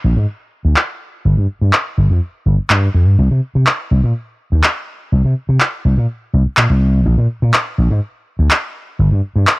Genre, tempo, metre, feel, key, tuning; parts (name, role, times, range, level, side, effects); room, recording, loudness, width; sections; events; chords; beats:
filtered disco house; 124 BPM; 4/4; straight; A4 = 440 Hz
vintage slap bass; bass; 0.0-9.4 s; G1 to C3; -12 LUFS; equal; tube saturation, low-pass filter
electronic handclaps; drums; 0.8-9.6 s; -14 LUFS; equal; low-pass filter on snare
little or no reverb; dry, gritty hardware recording; -13 LUFS; side -23 dB against mid
0.0-9.6 A section
filter sweep on slap bass 0.0-9.6
0.28 0.77 | 1.25 1.73 2.22 2.70 | 3.19 3.67 4.15 4.64 | 5.12 5.60 6.09 6.57 | 7.06 7.54 8.02 8.51 | 8.99 9.47